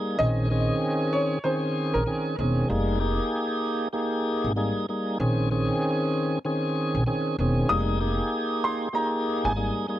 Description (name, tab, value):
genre	hip hop, boom-bap hip-hop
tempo	96 BPM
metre	4/4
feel	swing 59% on 16ths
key	F minor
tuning	A4 = 442 Hz
part	tonewheel organ	accompaniment	0.0-10.0 s	Eb3 to Ab4	-25 LUFS	equal	overdrive, slow rotary speaker, cassette tape
part	clear upright piano	melody	0.2-2.2, 7.7-9.7 s	Bb4 to Eb6	-29 LUFS	equal	tape echo
part	upright bass	bass	0.2-9.7 s	E1 to Bb1	-26 LUFS	equal	none
room	little or no reverb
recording	cassette tape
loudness	-23 LUFS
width	side -13 dB against mid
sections	0.0-7.7 A section; 7.7-10.0 B section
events	none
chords	0.2 Bbm11; 2.7 Fm11; 5.2 Bbm11; 7.7 Fm11